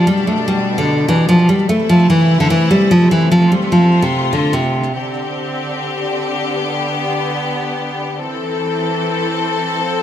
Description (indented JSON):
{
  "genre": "hip hop",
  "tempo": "148 BPM",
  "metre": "4/4",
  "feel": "half-time",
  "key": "C major",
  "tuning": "A4 = 440 Hz",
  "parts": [
    { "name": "nylon-string guitar", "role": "melody", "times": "0.0-4.9 s", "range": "C3 to A3", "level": "-12 LUFS", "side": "equal", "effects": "digital delay" },
    { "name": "bright symphonic string section", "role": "sustained chords", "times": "0.0-10.0 s", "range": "B2 to A4", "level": "-19 LUFS", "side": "left 2 dB", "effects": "none" }
  ],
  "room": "moderate scoring stage reverb, RT60 2.0 s, studio reverb",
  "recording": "none",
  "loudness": "-13 LUFS",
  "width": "side -11 dB against mid",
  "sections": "0.0-4.9 A section; 4.9-10.0 B section",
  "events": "none",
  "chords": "0.1 G; 1.7 Am; 3.3 F; 4.9 Csus2; 6.6 G; 8.2 Am"
}